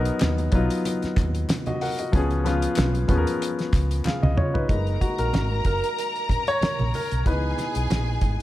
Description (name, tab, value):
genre	lush 1970s-style soul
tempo	94 BPM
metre	4/4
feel	swing 54% on 16ths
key	F# major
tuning	A4 = 440 Hz
part	warm grand piano	accompaniment	0.0-8.4 s	E3 to F#5	-26 LUFS	left 2 dB	none
part	woody fretless electric bass	bass	0.0-8.4 s	F#1 to C#3	-24 LUFS	equal	ensemble chorus
part	cloth-damped thuddy drum kit	drums	0.1-8.4 s	hi-hat, kick drum, snare drum, toms	-25 LUFS	equal	none
part	congas	percussion	0.2-8.4 s	none	-33 LUFS	right 4 dB	none
part	group handclap	percussion	0.2-4.2 s	none	-39 LUFS	left 4 dB	none
part	warm studio string section	second line	4.7-8.4 s	G#4 to A#5	-29 LUFS	equal	none
room	small room ambience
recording	none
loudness	-21 LUFS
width	side -15 dB against mid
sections	0.0-4.7 A section; 4.7-8.4 B section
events	drum fill 4.1-4.7; grand piano solo 4.7-8.4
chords	0.0 Bmaj7; 2.1 C#7; 4.7 F#6; 7.3 C#m7